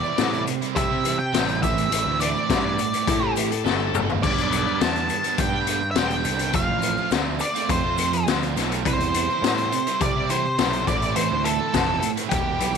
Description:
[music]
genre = classic rock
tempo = 104 BPM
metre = 4/4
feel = straight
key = A minor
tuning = A4 = 439 Hz
[part]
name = octave-fuzz lead guitar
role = melody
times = 0.0-12.8 s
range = G4 to A5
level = -25 LUFS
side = equal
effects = distortion
[part]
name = crunchy overdriven guitar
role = riff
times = 0.0-12.8 s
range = G2 to F4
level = -27 LUFS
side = right 16 dB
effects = none
[part]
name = egg shaker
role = percussion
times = 0.0-12.7 s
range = none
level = -41 LUFS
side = left 20 dB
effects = none
[part]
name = fuzz picked electric bass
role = bass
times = 0.2-12.8 s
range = E1 to C3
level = -28 LUFS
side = right 1 dB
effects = overdrive
[part]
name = raw garage drum kit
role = drums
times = 0.2-12.8 s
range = crash cymbal, hi-hat, kick drum, snare drum, toms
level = -25 LUFS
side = left 6 dB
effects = none
[part]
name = dark smooth lead guitar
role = second line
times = 3.1-4.1 s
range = E4 to A4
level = -29 LUFS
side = left 12 dB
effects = overdrive
[sound]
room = studio ambience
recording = 1960s-style stereo with parts hard left and right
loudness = -20 LUFS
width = side -6 dB against mid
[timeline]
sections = 0.0-12.8 A section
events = drum fill 3.6-4.2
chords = 0.0 C; 1.6 Am; 4.2 G; 6.5 F; 8.9 C; 10.9 Am

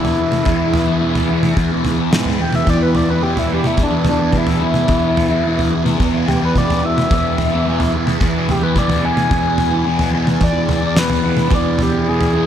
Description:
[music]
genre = psychedelic rock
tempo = 109 BPM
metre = 4/4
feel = straight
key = E major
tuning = A4 = 440 Hz
[part]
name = expressive synth lead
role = melody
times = 0.0-12.5 s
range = D4 to G#5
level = -20 LUFS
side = left 1 dB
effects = chorus, analog delay
[part]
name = string machine, full ensemble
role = sustained chords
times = 0.0-12.5 s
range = E3 to B4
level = -26 LUFS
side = right 2 dB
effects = ensemble chorus
[part]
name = thick fuzz guitar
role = riff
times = 0.0-12.5 s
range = E2 to E3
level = -20 LUFS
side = left 1 dB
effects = distortion, phaser
[part]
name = fuzz fingered electric bass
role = bass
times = 0.0-12.5 s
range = E2 to G#2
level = -19 LUFS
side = equal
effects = overdrive
[part]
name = damped 70s drum kit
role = drums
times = 0.0-12.3 s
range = kick drum, snare drum, toms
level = -20 LUFS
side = right 1 dB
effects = none
[sound]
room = moderate huge ambient reverb, RT60 7.2 s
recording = dreamy mix soaked in reverb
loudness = -14 LUFS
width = side -9 dB against mid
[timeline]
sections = 0.0-12.5 A section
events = analog synth lead solo 0.0-12.5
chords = 0.0 E

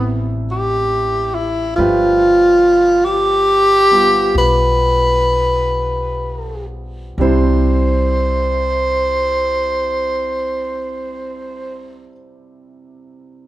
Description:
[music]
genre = jazz ballad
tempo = 40-50 BPM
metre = 4/4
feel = swing 66% on 8ths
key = C major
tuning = A4 = 440 Hz
[part]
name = breathy tenor saxophone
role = melody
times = 0.0-12.1 s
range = B3 to C5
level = -14 LUFS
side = equal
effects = none
[part]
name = clear concert grand piano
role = accompaniment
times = 0.0-13.5 s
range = C3 to E5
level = -23 LUFS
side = right 2 dB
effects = none
[part]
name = upright bass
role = bass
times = 0.0-12.0 s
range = G1 to C2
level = -21 LUFS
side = left 1 dB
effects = none
[sound]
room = wet large studio reverb, RT60 1.1 s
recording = band playing live in one room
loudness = -13 LUFS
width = side -14 dB against mid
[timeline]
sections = 0.0-7.2 A section; 7.2-13.1 B section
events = slowing down 0.0-7.2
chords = 0.0 Fmaj7 (rootless); 1.8 G7; 7.2 C

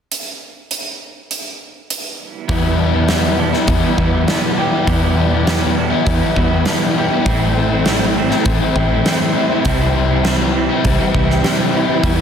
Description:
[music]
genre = rock, shoegaze and dream pop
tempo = 101 BPM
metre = 4/4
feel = straight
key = E minor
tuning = A4 = 440 Hz
[part]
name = huge arena drum kit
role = drums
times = 0.1-12.2 s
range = hi-hat, kick drum, snare drum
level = -20 LUFS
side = equal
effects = none
[part]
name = chorused pulse-width pad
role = sustained chords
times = 2.5-12.2 s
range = E4 to G5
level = -27 LUFS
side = right 1 dB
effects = none
[part]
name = electric guitar through a small old amp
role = arpeggios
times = 2.5-12.2 s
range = G3 to G4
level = -24 LUFS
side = left 1 dB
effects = lush chorus, tape echo
[part]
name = overdriven electric guitar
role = riff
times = 2.5-12.2 s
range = A2 to E4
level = -20 LUFS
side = right 10 dB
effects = reverse reverb
[part]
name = overdriven semi-hollow guitar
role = riff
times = 2.5-12.2 s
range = E2 to E4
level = -19 LUFS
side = left 10 dB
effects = lush chorus
[part]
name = vintage muted picked electric bass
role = bass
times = 2.5-12.2 s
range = A1 to E2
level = -19 LUFS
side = equal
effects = none
[sound]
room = light reverb, studio reverb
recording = dense, heavily limited modern master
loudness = -14 LUFS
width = side -8 dB against mid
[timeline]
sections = 0.1-2.5 A section; 2.5-12.2 B section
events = none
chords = 0.1 N.C.; 2.5 Em7; 7.3 Am7; 9.7 Cmaj7

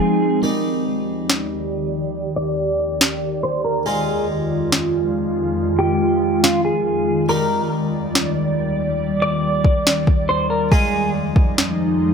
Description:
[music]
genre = hip hop, atmospheric cloud-rap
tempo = 140 BPM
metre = 4/4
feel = half-time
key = unclear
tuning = A4 = 438 Hz
[part]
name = clean electric guitar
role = melody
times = 0.0-11.1 s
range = F4 to D5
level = -22 LUFS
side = equal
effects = lush chorus, low-pass filter, ping-pong delay
[part]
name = ethereal airy pad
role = sustained chords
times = 0.0-12.1 s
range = Eb2 to D5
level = -20 LUFS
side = equal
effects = ensemble chorus, built-in reverb, sidechain pumping, low-pass filter
[part]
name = harpsichord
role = texture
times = 0.0-12.1 s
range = G3 to Eb5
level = -30 LUFS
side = equal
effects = none
[part]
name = smooth R&B drum kit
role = drums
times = 1.3-11.7 s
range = kick drum, snare drum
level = -16 LUFS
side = equal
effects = overdrive
[sound]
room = moderate digital room reverb, RT60 1.0 s, digital ambience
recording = none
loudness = -17 LUFS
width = side -6 dB against mid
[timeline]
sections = 0.4-12.1 A section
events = break 0.0-0.4; filter sweep 0.4-12.1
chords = 0.4 Ebmaj7; 3.9 Fm7; 7.3 Ebmaj7; 10.7 Fm7

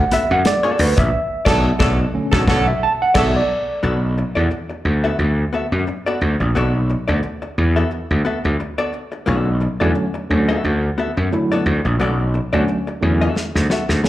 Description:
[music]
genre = funk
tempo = 88 BPM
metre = 4/4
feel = swing 56% on 16ths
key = B minor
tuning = A4 = 440 Hz
[part]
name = tine electric piano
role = stabs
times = 0.0-3.8, 9.3-14.1 s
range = D3 to A5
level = -20 LUFS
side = right 2 dB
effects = overdrive, medium stereo tremolo, slapback echo
[part]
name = gritty slap bass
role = bass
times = 0.0-14.0 s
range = A#1 to F#2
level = -17 LUFS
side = equal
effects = overdrive
[part]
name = hollow-body jazz guitar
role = accompaniment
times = 0.1-14.1 s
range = B3 to E5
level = -23 LUFS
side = left 3 dB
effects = slapback echo
[part]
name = damped 70s drum kit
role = drums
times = 0.1-3.4, 13.4-14.1 s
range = crash cymbal, hi-hat, kick drum, snare drum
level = -20 LUFS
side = equal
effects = none
[part]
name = warm horn section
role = second line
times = 1.5-3.3 s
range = F#3 to A4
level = -23 LUFS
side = right 2 dB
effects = slapback echo
[sound]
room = light reverb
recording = live gig heard through the venue's PA, club reverb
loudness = -16 LUFS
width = side -14 dB against mid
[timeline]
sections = 0.0-3.8 A section; 3.8-14.1 B section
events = tine electric piano solo 0.0-3.8; band accent 1.1-3.8; drum fill 13.4-14.1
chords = 0.0 Bm7

